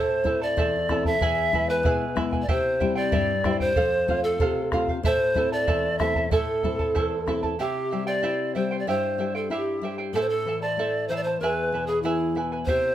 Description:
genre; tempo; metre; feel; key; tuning
andean folk, Andean ensemble; 94 BPM; 2/4; straight; A minor; A4 = 439 Hz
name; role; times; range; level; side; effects
bright polished pan flute; melody; 0.0-12.9 s; E4 to E5; -25 LUFS; equal; none
charango; accompaniment; 0.0-12.9 s; E4 to A5; -28 LUFS; right 4 dB; none
nylon-string guitar; accompaniment; 0.0-12.9 s; E2 to F4; -29 LUFS; left 5 dB; none
bombo; percussion; 0.2-7.6, 12.7-12.8 s; none; -29 LUFS; right 1 dB; none
room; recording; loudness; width
moderate studio reverb, RT60 0.5 s; none; -22 LUFS; side -11 dB against mid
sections
0.0-7.6 A section; 7.6-12.9 B section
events
none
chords
0.0 Am; 1.2 E; 2.5 C; 3.8 F; 5.0 Am; 7.6 C; 10.1 Am; 11.4 E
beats
0.57 | 1.21 1.85 | 2.49 3.13 | 3.77 4.41 | 5.04 5.68 | 6.32 6.96 | 7.59 8.23 | 8.87 9.50 | 10.13 10.77 | 11.40 12.04 | 12.67

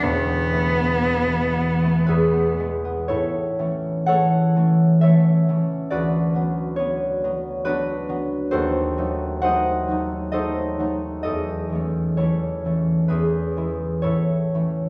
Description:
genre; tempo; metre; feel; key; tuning
classical, romantic duo for cello and harp; 55-71 BPM; 3/4; rubato; A major; A4 = 440 Hz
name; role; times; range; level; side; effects
rich cello; melody; 0.0-2.6 s; B3; -25 LUFS; equal; none
concert harp; accompaniment; 0.0-14.9 s; E1 to F#5; -22 LUFS; equal; none
room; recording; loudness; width
wet recital hall reverb, RT60 1.6 s; recorded in a church or concert hall, faint mains hum; -22 LUFS; mono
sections
0.0-3.1 A section; 3.1-14.9 B section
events
none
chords
0.0 Esus4; 2.1 E; 3.1 A; 5.9 Bm/D; 8.5 D#dim7; 11.2 A/E; 13.1 E; 14.0 A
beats
| 0.04 1.02 2.08 | 3.10 4.10 5.02 | 5.91 6.79 7.65 | 8.50 9.43 10.33 | 11.24 12.17 13.10 | 14.04

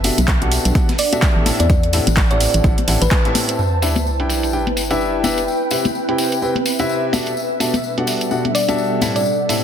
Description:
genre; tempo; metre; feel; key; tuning
piano house; 127 BPM; 4/4; swing 58% on 16ths; G major; A4 = 440 Hz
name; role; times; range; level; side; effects
warm grand piano; riff; 0.0-9.6 s; A2 to G5; -22 LUFS; left 2 dB; sidechain pumping, dub echo
organ-like FM bass; bass; 0.0-3.1 s; F#1 to E2; -18 LUFS; equal; tube saturation, sidechain pumping
breakbeat sampler-style drum kit; drums; 0.0-3.5 s; hi-hat, snare drum; -30 LUFS; right 1 dB; none
house drum kit; drums; 0.0-9.6 s; handclaps, hi-hat; -23 LUFS; right 2 dB; overdrive, low-pass filter on hats, low-pass filter on snare, low-pass filter on room
tambourine and congas; percussion; 0.0-9.6 s; none; -25 LUFS; left 4 dB; none
ethereal airy pad; texture; 0.0-9.6 s; B2 to A5; -23 LUFS; right 1 dB; ensemble chorus, built-in reverb, sidechain pumping
electronic kick drum; drums; 0.3-3.2 s; none; -16 LUFS; equal; overdrive
thumb-piano-like synth pluck; melody; 1.0-3.2, 8.5-9.4 s; B4 to D5; -23 LUFS; left 1 dB; chorus, dub echo
sub drop; sound effects; 3.6-5.5 s; none; -22 LUFS; equal; none
room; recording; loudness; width
moderate plate reverb, RT60 2.0 s; dense, heavily limited modern master; -15 LUFS; side -8 dB against mid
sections
0.0-3.6 A section; 3.6-9.6 B section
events
band accent 3.1; impact 3.6-5.5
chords
0.0 Em11; 1.5 Am7; 3.6 G6; 5.5 Cmaj7; 7.1 Em11/B; 9.0 Am7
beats
0.28 0.75 1.22 | 1.70 2.17 2.64 3.11 | 3.59 4.06 4.53 5.00 | 5.48 5.95 6.42 6.89 | 7.37 7.84 8.31 8.78 | 9.26

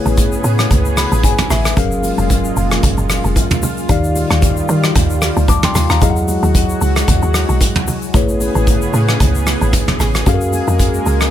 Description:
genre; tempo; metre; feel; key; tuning
amapiano; 113 BPM; 4/4; swing 55% on 16ths; unclear; A4 = 440 Hz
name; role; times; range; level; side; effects
tine electric piano; accompaniment; 0.0-11.3 s; D#3 to D6; -20 LUFS; left 5 dB; auto-pan
lush unison pad; sustained chords; 0.0-11.3 s; A#2 to G#4; -22 LUFS; right 1 dB; chorus, sidechain pumping
woody log drum bass; bass; 0.1-11.3 s; E#1 to D#3; -17 LUFS; equal; none
soft brush drum kit; drums; 0.1-11.3 s; hi-hat, kick drum, rim click, shaker, toms; -16 LUFS; right 1 dB; none
bongos and congas; percussion; 0.1-10.9 s; none; -25 LUFS; right 2 dB; none
room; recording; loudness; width
small room ambience; none; -12 LUFS; side -11 dB against mid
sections
0.0-11.3 A section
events
tine electric piano fill 0.7-1.8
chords
0.0 Amaj9; 1.8 F#maj9; 3.9 D#maj9; 6.0 Emaj9; 8.1 Amaj9; 10.3 F#maj9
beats
0.18 0.71 1.24 | 1.77 2.30 2.83 3.36 | 3.89 4.42 4.96 5.49 | 6.02 6.55 7.08 7.61 | 8.14 8.67 9.20 9.73 | 10.26 10.79

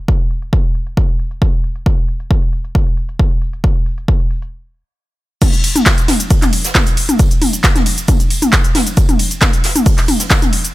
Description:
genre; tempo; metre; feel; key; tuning
techno; 135 BPM; 4/4; straight; none; none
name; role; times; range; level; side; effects
electronic kick drum; drums; 0.1-10.4 s; none; -13 LUFS; equal; none
techno drum kit; drums; 0.1-10.7 s; crash cymbal, handclaps, hi-hat, ride cymbal, shaker, toms; -14 LUFS; left 1 dB; low-pass filter on hats, low-pass filter on toms, low-pass filter on cymbals, low-pass filter on perc, low-pass filter on snare, low-pass filter on room
jazz brush drum kit; drums; 5.4-10.6 s; hi-hat, snare drum, tambourine; -25 LUFS; right 2 dB; sidechain pumping on hats, high-pass filter on hats, high-pass filter on snare, sidechain pumping on perc, high-pass filter on perc, high-pass filter on room
room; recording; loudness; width
little or no reverb; none; -12 LUFS; side -17 dB against mid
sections
0.0-5.4 A section; 5.4-10.7 B section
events
stop 4.5-5.4; drop 5.4-10.7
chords
none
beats
| 0.08 0.53 0.97 1.42 | 1.86 2.31 2.75 3.19 | 3.64 4.08 4.53 4.97 | 5.42 5.86 6.31 6.75 | 7.20 7.64 8.08 8.53 | 8.97 9.42 9.86 10.31

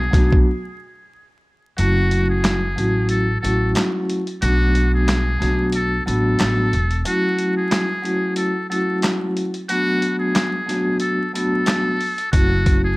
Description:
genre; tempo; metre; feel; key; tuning
hip hop, boom-bap hip-hop; 91 BPM; 4/4; swing 58% on 16ths; F# minor; A4 = 440 Hz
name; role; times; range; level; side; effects
trumpet with metal mute; melody; 0.0-13.0 s; F#4 to A4; -24 LUFS; equal; none
upright bass; bass; 0.0-7.0, 12.3-13.0 s; E1 to B1; -20 LUFS; equal; none
vibraphone with soft mallets; accompaniment; 0.1-13.0 s; F#3 to F#4; -21 LUFS; equal; cassette tape
dusty soul sampler-style drum kit; drums; 0.1-12.8 s; handclaps, hi-hat, kick drum, snare drum; -21 LUFS; equal; none
room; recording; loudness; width
small room ambience; vinyl crackle; -17 LUFS; side -23 dB against mid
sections
0.0-1.8 A section; 1.8-13.0 B section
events
break 0.5-1.8; kick muted 1.8-12.3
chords
0.0 Bm7; 1.8 F#m7; 4.4 Bm7; 7.1 F#m7; 9.7 Bm7; 12.3 F#m7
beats
0.46 1.12 | 1.78 2.44 3.10 3.76 | 4.42 5.08 5.74 6.40 | 7.06 7.71 8.38 9.03 | 9.69 10.35 11.01 11.67 | 12.33

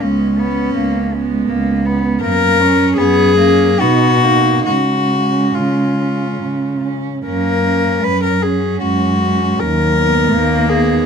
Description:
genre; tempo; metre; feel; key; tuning
classical, lyrical piece for cello ensemble; 68-83 BPM; 3/4; rubato; F# major; A4 = 440 Hz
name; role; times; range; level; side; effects
clear cello; melody; 0.0-11.1 s; C#4 to B4; -16 LUFS; left 5 dB; none
dark cello; second line; 0.0-11.1 s; B3 to D#4; -21 LUFS; right 11 dB; none
warm cello; accompaniment; 0.0-11.1 s; F#3 to C#4; -20 LUFS; equal; none
dark cello; bass; 0.0-11.0 s; C#2 to C#3; -17 LUFS; right 2 dB; none
room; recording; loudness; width
light reverb; close, detailed microphones; -12 LUFS; side -6 dB against mid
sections
0.0-11.1 A section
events
none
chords
0.0 G#madd11/C#; 2.2 F#; 3.8 B; 4.7 C#; 7.3 F#; 9.6 B/D#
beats
| 0.02 0.75 1.49 | 2.23 2.98 3.81 | 4.68 5.56 6.43 | 7.27 8.05 8.82 | 9.60 10.33

